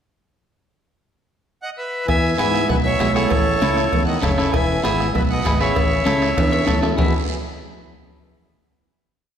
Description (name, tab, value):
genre	latin, cumbia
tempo	196 BPM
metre	4/4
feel	straight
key	E major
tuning	A4 = 440 Hz
part	accordion	melody	1.6-7.1 s	A4 to G#5	-22 LUFS	right 1 dB	none
part	clear trombone	second line	2.1-7.1 s	A2 to E3	-26 LUFS	left 4 dB	none
part	fingered electric bass	bass	2.1-7.1 s	E1 to G#2	-24 LUFS	equal	none
part	bombo	percussion	2.1-7.1 s	none	-23 LUFS	left 1 dB	none
part	congas	percussion	2.1-7.1 s	none	-27 LUFS	right 5 dB	none
part	cowbell and timbales	percussion	2.1-7.1 s	none	-30 LUFS	right 3 dB	none
part	guiro	percussion	2.1-7.1 s	none	-35 LUFS	right 6 dB	none
part	electric guitar at the edge of break-up	accompaniment	2.4-7.1 s	B3 to A5	-23 LUFS	left 1 dB	none
room	wet scoring stage reverb, RT60 1.8 s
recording	recorded in a church or concert hall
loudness	-16 LUFS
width	side -8 dB against mid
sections	0.9-2.1 pickup bar; 2.1-7.0 groove; 7.0-8.2 final chord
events	drum fill 6.4-7.0; clean electric guitar fill 6.4-7.0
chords	0.9 E5; 2.1 E; 3.3 A; 4.5 E; 5.8 A; 7.0 E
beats	| 0.86 1.17 1.48 1.78 | 2.09 2.39 2.70 3.01 | 3.31 3.62 3.93 4.23 | 4.54 4.84 5.15 5.46 | 5.76 6.07 6.38 6.68 | 6.99